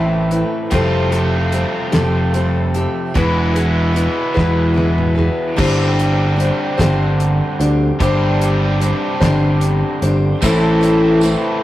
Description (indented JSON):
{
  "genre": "folk rock and heartland rock",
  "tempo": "49 BPM (dotted quarters)",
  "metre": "6/8",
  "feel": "straight",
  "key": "unclear",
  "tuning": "A4 = 441 Hz",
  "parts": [
    { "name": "picked steel-string acoustic guitar", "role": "accompaniment", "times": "0.0-11.6 s", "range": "A2 to C5", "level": "-19 LUFS", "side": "left 2 dB", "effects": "none" },
    { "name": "biting overdriven guitar", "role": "riff", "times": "0.0-11.6 s", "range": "E2 to A4", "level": "-21 LUFS", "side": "right 1 dB", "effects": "none" },
    { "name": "picked electric bass", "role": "bass", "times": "0.0-11.3 s", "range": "E1 to D2", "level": "-16 LUFS", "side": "equal", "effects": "none" },
    { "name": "damped 70s drum kit", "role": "drums", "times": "0.3-11.4 s", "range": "crash cymbal, hi-hat, kick drum, snare drum, toms", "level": "-21 LUFS", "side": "equal", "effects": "none" },
    { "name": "tambourine", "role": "percussion", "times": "10.4-11.4 s", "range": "none", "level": "-31 LUFS", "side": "right 5 dB", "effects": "none" }
  ],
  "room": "light reverb",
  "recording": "rough rehearsal-room recording, tube saturation",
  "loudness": "-13 LUFS",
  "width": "side -14 dB against mid",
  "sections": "0.0-5.6 A section; 5.6-11.6 B section",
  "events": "drum fill 4.4-5.6",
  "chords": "0.0 Amadd9; 0.7 Fadd9; 3.1 E; 5.6 Gsus4; 10.4 Am",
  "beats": "| 0.72 1.93 | 3.15 4.36 | 5.57 6.79 | 8.00 9.21 | 10.42 11.63"
}